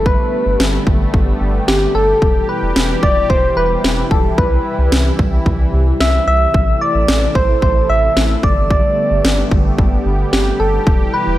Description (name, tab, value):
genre	synth-pop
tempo	111 BPM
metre	4/4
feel	straight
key	unclear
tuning	A4 = 439 Hz
part	soft struck synth lead	melody	0.0-11.4 s	G4 to E5	-17 LUFS	equal	chorus, slapback echo, shimmer reverb
part	sweeping resonant pad	sustained chords	0.0-11.4 s	B2 to A4	-21 LUFS	equal	chorus, shimmer reverb
part	round analog bass	bass	0.0-11.4 s	E1 to C2	-18 LUFS	equal	none
part	house drum kit	drums	0.1-11.0 s	kick drum, snare drum	-16 LUFS	equal	overdrive, gated reverb
room	light reverb, digital ambience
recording	none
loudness	-12 LUFS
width	side -14 dB against mid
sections	0.0-11.4 A section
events	none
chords	0.0 Gadd9; 2.2 Em; 4.4 C; 6.5 Am; 8.4 Gadd9; 10.9 Em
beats	| 0.06 0.60 1.14 1.68 | 2.22 2.76 3.30 3.84 | 4.38 4.92 5.46 6.00 | 6.54 7.08 7.62 8.16 | 8.71 9.25 9.79 10.33 | 10.87